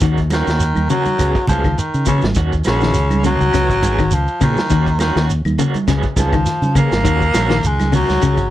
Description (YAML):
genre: afrobeat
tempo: 102 BPM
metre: 4/4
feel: swing 55% on 16ths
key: Eb minor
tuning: A4 = 440 Hz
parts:
  - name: clean electric guitar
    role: arpeggios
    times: 0.0-8.5 s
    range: Db3 to Eb3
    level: -21 LUFS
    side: left 6 dB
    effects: none
  - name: electric guitar through a small old amp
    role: stabs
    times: 0.0-8.4 s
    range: Gb3 to Ab4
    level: -25 LUFS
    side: right 3 dB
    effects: tremolo
  - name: fingered electric bass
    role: bass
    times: 0.0-8.5 s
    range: Ab1 to Db3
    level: -18 LUFS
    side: equal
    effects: none
  - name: vintage drum kit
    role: drums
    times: 0.0-8.5 s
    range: hi-hat, kick drum, snare drum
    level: -22 LUFS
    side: equal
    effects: none
  - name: congas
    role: percussion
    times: 0.0-8.4 s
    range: none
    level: -23 LUFS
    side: right 3 dB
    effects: none
  - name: shekere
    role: percussion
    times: 0.0-8.5 s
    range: none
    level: -25 LUFS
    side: right 2 dB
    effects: none
  - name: raspy baritone saxophone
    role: melody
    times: 0.3-8.5 s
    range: Db3 to Bb3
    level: -19 LUFS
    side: equal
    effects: none
  - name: claves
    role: percussion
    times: 0.3-8.4 s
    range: none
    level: -36 LUFS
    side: left 8 dB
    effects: none
room: little or no reverb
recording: dry, close 1970s-style studio recording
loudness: -14 LUFS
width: side -13 dB against mid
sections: 0.0-8.5 A section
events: baritone saxophone solo 0.0-8.5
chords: 0.0 Ebm7; 1.2 Db7sus4; 2.4 Ebm7; 3.5 Db7sus4; 4.7 Ebm7; 5.9 Db7sus4; 7.1 Ebm7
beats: | 0.02 0.61 1.19 1.78 | 2.37 2.95 3.54 4.12 | 4.71 5.30 5.88 6.47 | 7.05 7.64 8.22